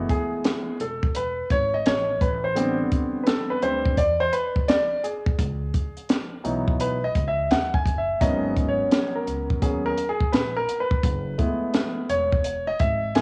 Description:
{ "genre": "hip hop, jazz-hop", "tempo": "85 BPM", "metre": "4/4", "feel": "swing 64% on 16ths", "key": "unclear", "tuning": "A4 = 444 Hz", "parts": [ { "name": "warm grand piano", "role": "accompaniment", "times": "0.0-13.2 s", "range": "D3 to G#5", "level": "-26 LUFS", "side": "equal", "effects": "cassette tape" }, { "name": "upright bass", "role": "bass", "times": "0.0-13.2 s", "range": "E1 to E2", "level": "-33 LUFS", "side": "equal", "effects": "none" }, { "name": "compact cocktail drum kit", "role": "drums", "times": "0.1-13.2 s", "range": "hi-hat, kick drum, snare drum", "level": "-26 LUFS", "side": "equal", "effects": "cassette tape" } ], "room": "moderate spring reverb, RT60 1.7 s, studio reverb", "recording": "home recording on cassette, small room ambience", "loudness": "-24 LUFS", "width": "mono", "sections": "0.0-13.2 A section", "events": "grand piano solo 0.0-13.2", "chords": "0.0 F#m11 (rootless); 2.2 Am11; 5.4 C#m11; 8.2 G#m11; 11.0 F#m11" }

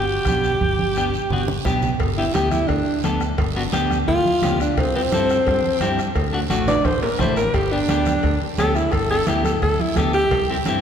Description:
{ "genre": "latin, cumbia", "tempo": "173 BPM", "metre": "4/4", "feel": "straight", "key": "G major", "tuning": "A4 = 439 Hz", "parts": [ { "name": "warm alto saxophone", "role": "melody", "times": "0.0-10.5 s", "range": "C4 to D5", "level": "-21 LUFS", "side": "equal", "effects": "none" }, { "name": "clean electric guitar", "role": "accompaniment", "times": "0.0-10.8 s", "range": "A3 to A4", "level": "-25 LUFS", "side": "left 1 dB", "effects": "none" }, { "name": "fingered electric bass", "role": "bass", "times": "0.0-10.8 s", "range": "G1 to G2", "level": "-25 LUFS", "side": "equal", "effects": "none" }, { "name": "bombo", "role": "percussion", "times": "0.3-10.8 s", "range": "none", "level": "-27 LUFS", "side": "equal", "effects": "none" }, { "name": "congas", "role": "percussion", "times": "0.3-10.8 s", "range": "none", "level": "-28 LUFS", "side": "right 3 dB", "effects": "none" }, { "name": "guiro", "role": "percussion", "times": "0.3-10.8 s", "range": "none", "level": "-35 LUFS", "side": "right 7 dB", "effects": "none" }, { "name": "cowbell and timbales", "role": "percussion", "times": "2.0-10.8 s", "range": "none", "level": "-30 LUFS", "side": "right 3 dB", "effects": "none" } ], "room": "wet church reverb, RT60 3.4 s", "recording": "recorded in a church or concert hall", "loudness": "-17 LUFS", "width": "side -8 dB against mid", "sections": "0.0-2.0 A section; 2.0-10.8 B section", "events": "drum fill 0.6-2.0, 6.7-7.5; alto saxophone solo 2.0-10.8", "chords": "0.0 G; 4.8 C; 6.2 D; 7.5 G" }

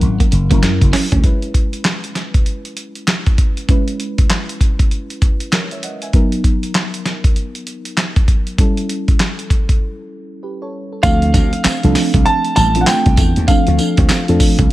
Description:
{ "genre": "R&B, new jack swing", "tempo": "98 BPM", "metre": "4/4", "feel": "swing 62% on 16ths", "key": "C# dorian, D minor from 11.0 s", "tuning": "A4 = 440 Hz", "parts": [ { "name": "dark concert grand piano", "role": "melody", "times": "0.0-0.3, 11.0-14.7 s", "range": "F5 to A5", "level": "-19 LUFS", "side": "right 1 dB", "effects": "digital delay" }, { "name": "mellow FM electric piano", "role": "accompaniment", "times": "0.0-14.7 s", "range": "F3 to G#5", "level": "-21 LUFS", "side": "equal", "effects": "chorus, phaser" }, { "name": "slap bass with an envelope filter", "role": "bass", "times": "0.0-1.2, 11.0-14.7 s", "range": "F#1 to F#2", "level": "-15 LUFS", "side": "equal", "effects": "none" }, { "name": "dusty soul sampler-style drum kit", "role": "drums", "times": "0.0-14.7 s", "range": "handclaps, hi-hat, kick drum, snare drum, tambourine", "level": "-14 LUFS", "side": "equal", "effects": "none" }, { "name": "clean electric guitar", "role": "riff", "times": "0.2-1.2, 11.0-14.7 s", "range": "G3 to F4", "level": "-24 LUFS", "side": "right 6 dB", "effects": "lush chorus" } ], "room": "digital ambience", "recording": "none", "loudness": "-13 LUFS", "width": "side -16 dB against mid", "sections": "0.0-1.2 A section; 1.2-11.0 B section; 11.0-14.7 A section", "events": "drum fill 0.0-1.2; break 9.8-11.0", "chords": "0.0 F#7; 1.2 C#m7; 6.1 Bmaj7; 8.6 A7; 11.0 Dm7" }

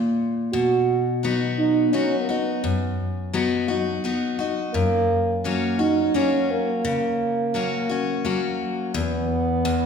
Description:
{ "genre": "country", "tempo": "86 BPM", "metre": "3/4", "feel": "straight", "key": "B major", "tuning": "A4 = 439 Hz", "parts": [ { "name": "picked steel-string acoustic guitar", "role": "accompaniment", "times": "0.0-9.9 s", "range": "E2 to F#4", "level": "-23 LUFS", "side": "left 3 dB", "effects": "none" }, { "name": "dark French horn", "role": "melody", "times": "0.5-9.9 s", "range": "A#3 to F#4", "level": "-22 LUFS", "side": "right 2 dB", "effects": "none" } ], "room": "wet recital hall reverb, RT60 1.6 s", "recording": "recorded in a church or concert hall", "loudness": "-20 LUFS", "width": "side -6 dB against mid", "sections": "0.0-8.9 A section", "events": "none", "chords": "0.0 N.C.; 0.5 B; 4.7 F#; 8.9 E5" }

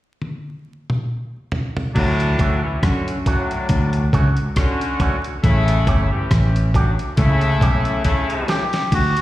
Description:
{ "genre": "roots reggae", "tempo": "69 BPM", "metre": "4/4", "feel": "swing 56% on 16ths", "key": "D major", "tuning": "A4 = 440 Hz", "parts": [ { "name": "dusty soul sampler-style drum kit", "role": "drums", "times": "0.2-9.2 s", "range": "crash cymbal, hi-hat, kick drum, rim click, snare drum, toms", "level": "-20 LUFS", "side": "equal", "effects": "none" }, { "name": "clear horn section", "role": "second line", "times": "2.0-8.7 s", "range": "A2 to G4", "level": "-23 LUFS", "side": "left 2 dB", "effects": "tape echo, slapback echo" }, { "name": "fingered electric bass", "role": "bass", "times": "2.0-9.1 s", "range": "G1 to F#2", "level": "-18 LUFS", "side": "equal", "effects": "none" }, { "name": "electric guitar with an envelope filter", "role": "accompaniment", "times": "2.4-8.6 s", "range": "A3 to G4", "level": "-29 LUFS", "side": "right 4 dB", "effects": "spring reverb, tape echo, slapback echo" }, { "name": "melodica", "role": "melody", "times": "8.5-9.2 s", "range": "F#4 to G4", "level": "-20 LUFS", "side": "equal", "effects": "tape echo, slapback echo" } ], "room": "little or no reverb", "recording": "live gig heard through the venue's PA, recital hall reverb, vinyl crackle", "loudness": "-16 LUFS", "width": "side -15 dB against mid", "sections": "0.0-2.0 A section; 2.0-8.9 B section", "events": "drum fill 0.2-2.0, 8.1-8.9", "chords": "0.0 N.C.; 2.0 Dmaj7; 5.4 A7" }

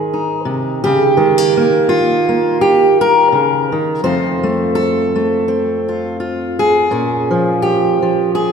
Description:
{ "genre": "folk, solo fingerstyle acoustic guitar", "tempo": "84 BPM", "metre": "4/4", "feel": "swing 56% on 8ths", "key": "unclear", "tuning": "A4 = 443 Hz", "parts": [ { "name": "fingerpicked steel-string acoustic guitar", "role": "solo", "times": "0.0-8.5 s", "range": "F2 to C5", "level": "-12 LUFS", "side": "equal", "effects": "none" } ], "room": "wet concert hall reverb, RT60 2.5 s", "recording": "recorded in a church or concert hall", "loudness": "-12 LUFS", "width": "side -6 dB against mid", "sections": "0.0-8.5 A section", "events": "none", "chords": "0.0 Ab; 1.2 Eb7; 4.0 F; 6.9 Bbm7" }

